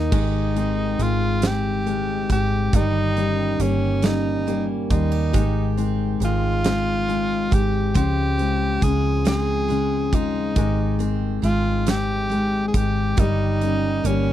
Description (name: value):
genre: six-eight pop ballad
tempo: 46 BPM (dotted quarters)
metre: 6/8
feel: straight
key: Ab major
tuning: A4 = 440 Hz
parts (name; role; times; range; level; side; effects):
- clear tenor saxophone; melody; 0.0-14.3 s; Db4 to Ab4; -25 LUFS; right 1 dB; none
- warm upright piano; accompaniment; 0.0-14.3 s; Db3 to Bb3; -25 LUFS; left 9 dB; none
- picked steel-string acoustic guitar; arpeggios; 0.0-14.3 s; Eb3 to G4; -29 LUFS; right 11 dB; none
- vintage muted fingered electric bass; bass; 0.0-14.3 s; G1 to Eb2; -24 LUFS; right 1 dB; none
- huge arena drum kit; drums; 0.1-14.3 s; crash cymbal, hi-hat, kick drum, snare drum; -22 LUFS; right 1 dB; none
room: little or no reverb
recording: dry, close 1970s-style studio recording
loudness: -19 LUFS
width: side -12 dB against mid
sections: 0.1-14.3 A section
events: none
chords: 0.1 Abmaj7; 2.7 Eb7/G; 5.3 Abmaj7; 8.0 Dbmaj7; 10.6 Abmaj7; 13.2 Eb7/G